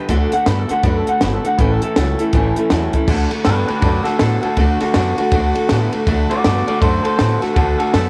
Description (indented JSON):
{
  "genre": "rockabilly",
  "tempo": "161 BPM",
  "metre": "4/4",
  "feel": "swing 62% on 8ths",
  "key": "D major",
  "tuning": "A4 = 440 Hz",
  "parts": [
    { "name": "picked acoustic archtop guitar", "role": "accompaniment", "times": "0.0-8.1 s", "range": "A2 to A4", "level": "-25 LUFS", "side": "equal", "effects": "none" },
    { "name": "electric guitar through a small old amp", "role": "riff", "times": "0.0-8.1 s", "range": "A2 to B3", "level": "-25 LUFS", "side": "equal", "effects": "none" },
    { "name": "upright bass", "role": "bass", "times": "0.1-8.1 s", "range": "G1 to A2", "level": "-21 LUFS", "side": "equal", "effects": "none" },
    { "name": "compact cocktail drum kit", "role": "drums", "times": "0.1-8.0 s", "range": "crash cymbal, hi-hat, kick drum, ride cymbal, snare drum", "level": "-22 LUFS", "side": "equal", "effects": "none" },
    { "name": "electric guitar through a small old amp", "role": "melody", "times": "0.3-8.1 s", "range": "D4 to F#5", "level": "-23 LUFS", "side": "equal", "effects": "tape echo" }
  ],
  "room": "light reverb",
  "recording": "none",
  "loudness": "-16 LUFS",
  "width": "mono",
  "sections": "0.0-3.1 A section; 3.1-8.1 A section",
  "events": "none",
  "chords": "0.1 D; 1.6 A; 3.1 D",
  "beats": "| 0.10 0.47 0.84 1.22 | 1.59 1.96 2.34 2.71 | 3.08 3.46 3.83 4.20 | 4.58 4.95 5.32 5.70 | 6.07 6.44 6.81 7.19 | 7.56 7.93"
}